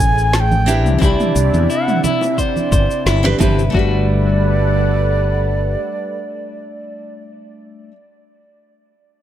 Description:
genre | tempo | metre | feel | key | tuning
sunset chillout | 88 BPM | 4/4 | swing 53% on 16ths | G major | A4 = 439 Hz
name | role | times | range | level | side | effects
wooden flute | melody | 0.0-7.2 s | D5 to A5 | -22 LUFS | right 3 dB | tape echo
nylon-string guitar | accompaniment | 0.0-8.0 s | G3 to B5 | -23 LUFS | left 1 dB | auto-pan
lush unison pad | sustained chords | 0.0-7.2 s | C3 to F#5 | -25 LUFS | equal | chorus, phaser
mellow fretless electric bass | bass | 0.0-5.7 s | G1 to E2 | -16 LUFS | left 1 dB | none
congas and bongos | percussion | 0.0-3.5 s | none | -25 LUFS | right 2 dB | none
deep house drum kit | drums | 0.2-3.7 s | shaker, snare drum, toms | -23 LUFS | equal | none
clean electric guitar | arpeggios | 0.7-4.1 s | E4 to C5 | -25 LUFS | left 4 dB | tape echo
electronic kick drum | drums | 1.0-3.9 s | none | -18 LUFS | equal | none
room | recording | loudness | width
light reverb | none | -13 LUFS | side -11 dB against mid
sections
0.0-3.7 A section; 3.7-6.5 B section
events
band accent 3.1-3.4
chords
0.0 Amaj9; 0.7 Cmaj9; 3.7 Gmaj9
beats
0.33 | 1.02 1.70 2.38 3.06 | 3.74 4.42 5.11 5.79

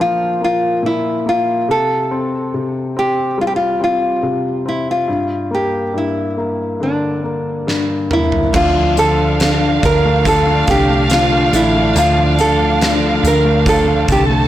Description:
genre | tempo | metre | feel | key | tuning
pop ballad | 70 BPM | 4/4 | straight | D minor | A4 = 440 Hz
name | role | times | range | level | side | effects
nylon-string guitar | melody | 0.0-14.2 s | D4 to Bb4 | -16 LUFS | equal | none
warm baby grand piano | accompaniment | 0.0-14.5 s | G2 to C4 | -20 LUFS | left 2 dB | none
huge arena drum kit | drums | 7.7-14.3 s | crash cymbal, hi-hat, kick drum, snare drum, toms | -20 LUFS | equal | none
dark symphonic violin section | second line | 8.5-14.5 s | D4 to A5 | -19 LUFS | right 2 dB | none
nylon-string guitar | arpeggios | 8.5-14.5 s | D3 to A4 | -25 LUFS | right 4 dB | none
woody fretless electric bass | bass | 8.5-14.5 s | A1 to D2 | -18 LUFS | right 1 dB | none
room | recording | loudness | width
light reverb, small room reverb | blown-out, overdriven recording, overdrive | -13 LUFS | side -13 dB against mid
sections
0.0-8.5 A section; 8.5-14.5 B section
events
drum fill 7.7-8.5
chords
0.0 Bb5; 1.7 Csus4; 5.1 Gm; 8.5 Dm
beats
0.83 | 1.68 2.54 3.38 4.23 | 5.08 5.93 6.79 7.66 | 8.53 9.39 10.25 11.11 | 11.96 12.81 13.66

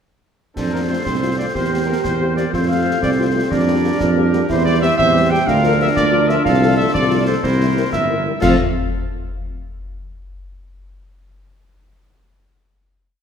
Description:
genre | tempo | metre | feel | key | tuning
military-style march for wind band | 122 BPM (dotted quarters) | 6/8 | straight | F major | A4 = 439 Hz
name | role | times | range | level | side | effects
mellow trumpet section | melody | 0.6-8.6 s | A4 to G5 | -20 LUFS | equal | none
clear woodwind section | second line | 0.6-8.5 s | E4 to C5 | -24 LUFS | left 2 dB | none
warm euphonium | second line | 0.6-8.2 s | C4 to G4 | -23 LUFS | right 4 dB | none
mellow tuba | bass | 0.6-8.6 s | G1 to F2 | -18 LUFS | right 2 dB | none
concert snare drum, clash cymbals and concert bass drum | drums | 0.6-8.6 s | none | -26 LUFS | left 2 dB | none
dark French horn section | accompaniment | 0.7-8.6 s | F3 to C5 | -24 LUFS | left 6 dB | none
room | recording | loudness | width
wet scoring stage reverb, RT60 2.0 s | none | -14 LUFS | side -7 dB against mid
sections
0.6-8.4 A section; 8.4-9.4 final chord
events
none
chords
0.6 F; 1.6 C7/E; 2.5 F; 3.5 Gm7/F; 4.5 C/E; 5.5 Bb/D; 6.5 F/C; 7.4 C7; 8.4 F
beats
| 0.57 1.06 | 1.55 2.04 | 2.53 3.02 | 3.51 4.00 | 4.49 4.98 | 5.47 5.96 | 6.45 6.94 | 7.43 7.92 | 8.41

